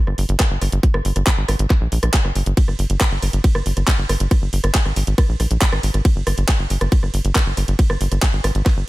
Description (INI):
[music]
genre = psychedelic trance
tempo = 138 BPM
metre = 4/4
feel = straight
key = G phrygian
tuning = A4 = 440 Hz
[part]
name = tight sequencer bass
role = bass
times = 0.1-8.8 s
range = G1 to Bb1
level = -19 LUFS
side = equal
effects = none
[part]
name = garage drum kit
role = drums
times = 0.1-8.7 s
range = handclaps, hi-hat, ride cymbal, rim click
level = -23 LUFS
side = right 1 dB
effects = overdrive
[part]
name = electronic kick drum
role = drums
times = 0.4-8.7 s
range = none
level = -15 LUFS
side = equal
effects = overdrive
[sound]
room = digital ambience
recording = none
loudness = -16 LUFS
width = side -18 dB against mid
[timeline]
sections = 0.0-8.9 A section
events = none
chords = none